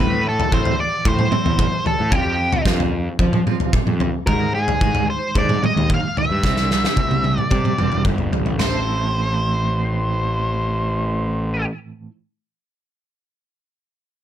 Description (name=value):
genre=quiet-loud alternative rock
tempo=111 BPM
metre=4/4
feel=straight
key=A minor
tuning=A4 = 440 Hz
part: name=octave-fuzz lead guitar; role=melody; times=0.0-11.7 s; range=G4 to F5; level=-22 LUFS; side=equal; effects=distortion, slapback echo
part: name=twelve-string electric guitar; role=arpeggios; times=0.0-12.1 s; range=G#2 to A4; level=-27 LUFS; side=right 6 dB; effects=tremolo
part: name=fuzz picked electric bass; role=bass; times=0.0-11.6 s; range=E1 to F3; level=-22 LUFS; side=equal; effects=overdrive
part: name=loose indie drum kit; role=drums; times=0.4-8.7 s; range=kick drum, snare drum, splash cymbal, toms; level=-20 LUFS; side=equal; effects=none
room=little or no reverb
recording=none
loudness=-17 LUFS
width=side -10 dB against mid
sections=0.0-8.6 A section; 8.6-12.9 B section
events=drum fill 6.4-8.6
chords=0.0 Am; 2.1 F5; 4.3 G#5; 6.4 C; 8.6 Am